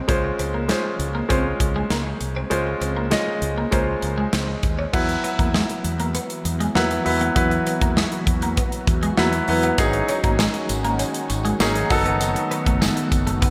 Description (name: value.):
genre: 1980s-style pop.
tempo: 99 BPM.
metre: 4/4.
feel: straight.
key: unclear.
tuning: A4 = 441 Hz.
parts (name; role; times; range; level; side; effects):
clear concert grand piano; accompaniment; 0.0-13.5 s; F#3 to Eb5; -26 LUFS; equal; shimmer reverb.
twelve-string electric guitar; riff; 0.0-13.5 s; Ab3 to Db4; -30 LUFS; equal; analog chorus, delay, shimmer reverb.
mellow fretless electric bass; bass; 0.1-13.4 s; Gb1 to E2; -29 LUFS; equal; none.
modern studio drum kit; drums; 0.1-13.5 s; crash cymbal, hi-hat, kick drum, snare drum; -26 LUFS; equal; gated reverb.
phased analog pad; sustained chords; 5.8-13.5 s; Eb3 to F#4; -30 LUFS; equal; phaser, chorus.
tambourine; percussion; 9.8-13.3 s; none; -38 LUFS; equal; none.
room: moderate plate reverb, RT60 3.0 s.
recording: bright 1980s-style digital production.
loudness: -21 LUFS.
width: mono.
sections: 0.0-4.9 A section; 4.9-13.5 B section.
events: none.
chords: 0.1 Dbmaj7; 4.9 Esus2; 9.8 Ab7sus4; 11.9 Cb7/Gb.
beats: | 0.09 0.69 1.30 1.91 | 2.51 3.12 3.72 4.33 | 4.93 5.54 6.15 6.75 | 7.36 7.97 8.57 9.18 | 9.78 10.39 11.00 11.60 | 12.21 12.81 13.42.